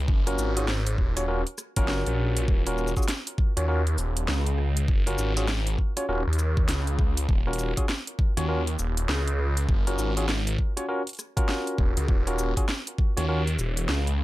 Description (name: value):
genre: glitch hop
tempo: 100 BPM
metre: 4/4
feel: swing 62% on 16ths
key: Eb minor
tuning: A4 = 445 Hz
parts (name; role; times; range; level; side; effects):
- phased detuned saw bass; bass; 0.0-14.2 s; Eb1 to Eb2; -26 LUFS; equal; phaser
- electronic kick drum; drums; 0.1-13.1 s; none; -24 LUFS; equal; overdrive
- barky tine electric piano; stabs; 0.3-13.4 s; Db4 to Db5; -30 LUFS; equal; sidechain pumping, tape echo
- drum and bass drum kit; drums; 0.3-14.2 s; hi-hat, rim click, shaker, snare drum; -31 LUFS; equal; overdrive
room: little or no reverb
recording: none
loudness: -23 LUFS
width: side -17 dB against mid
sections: 0.0-14.2 A section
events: kick drops out 1.9-2.5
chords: 0.0 Ebm9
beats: | 0.09 0.69 1.28 1.89 | 2.48 3.08 3.69 4.29 | 4.88 5.49 6.08 6.68 | 7.29 7.88 8.48 9.09 | 9.69 10.29 10.88 11.48 | 12.09 12.69 13.29 13.88